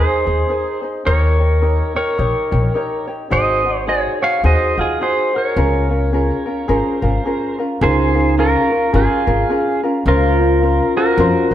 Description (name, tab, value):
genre	Hawaiian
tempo	107 BPM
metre	4/4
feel	swing 60% on 8ths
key	Db major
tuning	A4 = 440 Hz
part	pedal steel guitar	melody	0.0-11.5 s	F4 to F5	-18 LUFS	right 1 dB	none
part	ukulele	accompaniment	0.0-11.5 s	Db4 to Db5	-20 LUFS	left 1 dB	none
part	upright bass	bass	0.0-11.5 s	Ab1 to F2	-17 LUFS	equal	none
part	vibraphone with medium hard mallets	second line	7.8-11.5 s	Db4 to F4	-21 LUFS	equal	none
room	wet stone room reverb, RT60 1.4 s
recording	band playing live in one room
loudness	-14 LUFS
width	side -11 dB against mid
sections	0.0-7.8 A section; 7.8-11.5 A section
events	none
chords	0.0 Abadd9; 1.1 Eb7; 3.3 Ab7; 5.6 Db6; 10.1 Bbmadd9/Db